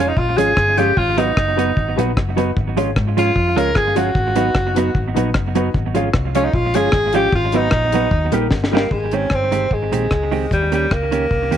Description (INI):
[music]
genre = ska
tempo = 151 BPM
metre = 4/4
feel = straight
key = unclear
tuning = A4 = 440 Hz
[part]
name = warm tenor saxophone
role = melody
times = 0.0-11.6 s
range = G3 to Bb4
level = -19 LUFS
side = equal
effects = none
[part]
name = mellow electric guitar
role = accompaniment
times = 0.0-11.6 s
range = Eb3 to G4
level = -22 LUFS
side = right 9 dB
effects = tape echo
[part]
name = dark upright piano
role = stabs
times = 0.0-8.8 s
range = D#4 to Db5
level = -24 LUFS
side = left 12 dB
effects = none
[part]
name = hollow-body short-scale fingered electric bass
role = bass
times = 0.0-11.6 s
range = F1 to Ab2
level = -22 LUFS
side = left 1 dB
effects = none
[part]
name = deep reggae drum kit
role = drums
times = 0.2-11.6 s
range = hi-hat, kick drum, rim click, snare drum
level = -21 LUFS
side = left 1 dB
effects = none
[sound]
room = light reverb, small room reverb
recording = 1960s-style stereo with parts hard left and right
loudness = -15 LUFS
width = side -10 dB against mid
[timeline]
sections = 0.0-8.9 A section; 8.9-11.6 B section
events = drum fill 8.5-8.9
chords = 0.0 Db; 1.0 B; 2.6 Db/Ab; 4.1 B; 5.7 Db/Ab; 7.3 B/Ab; 8.1 Eb; 8.9 Abmaj7; 10.5 Eb7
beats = 0.17 0.57 | 0.96 1.36 1.76 2.16 | 2.56 2.95 3.35 3.75 | 4.15 4.55 4.94 5.34 | 5.74 6.14 6.53 6.93 | 7.33 7.73 8.12 8.52 | 8.92 9.32 9.72 10.12 | 10.52 10.91 11.31